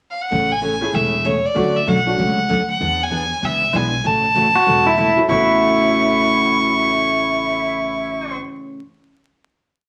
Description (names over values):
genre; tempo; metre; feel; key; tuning
country, western swing; 193 BPM; 4/4; swing 62% on 8ths; A major; A4 = 439 Hz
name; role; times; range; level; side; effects
clear fiddle; melody; 0.1-8.4 s; C#5 to C#6; -20 LUFS; equal; none
picked steel-string acoustic guitar; accompaniment; 0.3-8.8 s; A2 to G#4; -25 LUFS; equal; none
upright bass; bass; 0.3-8.4 s; E1 to E2; -29 LUFS; equal; none
tack piano; accompaniment; 0.8-8.4 s; A2 to G#4; -29 LUFS; equal; none
pedal steel guitar; second line; 4.6-8.4 s; E4 to F#4; -20 LUFS; equal; none
room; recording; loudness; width
wet studio reverb, RT60 0.9 s; vinyl crackle; -17 LUFS; mono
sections
0.0-0.3 pickup bar; 0.3-5.3 A section; 5.3-7.8 final chord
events
none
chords
0.3 Amaj7; 1.6 Dmaj7; 2.8 E7; 4.0 A6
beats
0.01 | 0.32 0.63 0.94 1.25 | 1.56 1.87 2.18 2.49 | 2.80 3.11 3.42 3.73 | 4.05 4.36 4.67 4.98 | 5.29 5.60 5.91 6.22 | 6.53 6.84 7.15 7.46